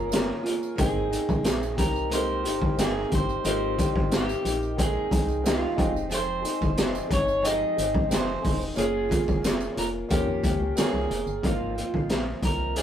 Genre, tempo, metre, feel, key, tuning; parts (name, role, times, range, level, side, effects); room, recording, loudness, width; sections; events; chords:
indie pop, bedroom pop; 90 BPM; 4/4; straight; Ab major; A4 = 440 Hz
electric guitar through a small old amp; melody; 0.0-12.8 s; F4 to Eb5; -29 LUFS; right 2 dB
fingerpicked steel-string acoustic guitar; accompaniment; 0.0-12.8 s; Ab2 to Ab4; -31 LUFS; left 3 dB; warbly pitch drift
warm upright piano; accompaniment; 0.0-12.8 s; Ab3 to G5; -34 LUFS; right 2 dB
organ-like FM bass; bass; 0.0-12.8 s; Eb1 to F2; -33 LUFS; equal
raw garage drum kit; drums; 0.1-12.8 s; hi-hat, kick drum, snare drum; -26 LUFS; equal
tambourine; percussion; 0.1-11.4 s; -44 LUFS; right 4 dB
light reverb; rough rehearsal-room recording, tube saturation; -23 LUFS; side -10 dB against mid
0.0-11.4 A section; 11.4-12.8 B section
0.0 Gbmaj7; 0.8 Abmaj7; 5.8 Fm7; 8.8 Gbmaj7; 10.1 Eb7; 11.4 Ab69